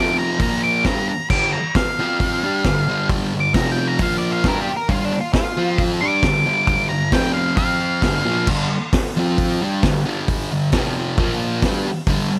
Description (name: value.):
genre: garage rock duo or trio.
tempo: 134 BPM.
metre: 4/4.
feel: straight.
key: unclear.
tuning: A4 = 440 Hz.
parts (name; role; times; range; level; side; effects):
octave-fuzz lead guitar; melody; 0.0-8.4 s; D4 to D6; -24 LUFS; equal; distortion.
thick fuzz guitar; riff; 0.0-12.3 s; F2 to G4; -23 LUFS; equal; distortion.
vintage drum kit; drums; 0.4-12.2 s; crash cymbal, hi-hat, kick drum, snare drum; -24 LUFS; equal; none.
room: studio reverb.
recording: none.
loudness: -19 LUFS.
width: mono.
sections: 0.0-8.5 A section; 8.5-12.4 B section.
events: lead electric guitar solo 0.0-8.5.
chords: 0.4 Bb5; 0.9 G5; 2.0 F5; 2.4 G5; 3.5 F5; 4.0 Bb5; 4.4 G5; 5.6 F5; 6.0 G5; 7.1 F5; 8.0 G5; 9.2 F5; 9.6 G5; 10.7 F5; 11.2 Bb5; 11.6 G5.